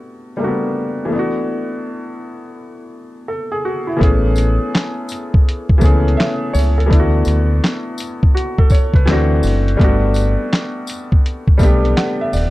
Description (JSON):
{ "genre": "lo-fi hip hop", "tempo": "83 BPM", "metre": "4/4", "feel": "swing 65% on 16ths", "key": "A major", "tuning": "A4 = 445 Hz", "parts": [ { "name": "felt-muted upright piano", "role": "accompaniment", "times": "0.0-12.5 s", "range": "E3 to F#5", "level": "-19 LUFS", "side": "left 1 dB", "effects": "low-pass filter" }, { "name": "deep dub fingered electric bass", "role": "bass", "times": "4.0-12.5 s", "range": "D#1 to D2", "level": "-15 LUFS", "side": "equal", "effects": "none" }, { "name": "lo-fi sampler-style drum kit", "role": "drums", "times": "4.0-12.5 s", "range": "handclaps, hi-hat, kick drum, snare drum", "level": "-13 LUFS", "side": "equal", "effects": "none" }, { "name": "tambourine", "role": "percussion", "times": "4.4-12.5 s", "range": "none", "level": "-34 LUFS", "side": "left 4 dB", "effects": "none" } ], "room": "little or no reverb", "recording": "dark, warm production", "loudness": "-13 LUFS", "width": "side -18 dB against mid", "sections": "0.0-4.0 A section; 4.0-12.5 B section", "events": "none", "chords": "0.0 Gmaj7; 1.1 E7sus4; 4.0 Amaj7; 6.9 D6; 9.1 D7; 9.8 Gmaj7" }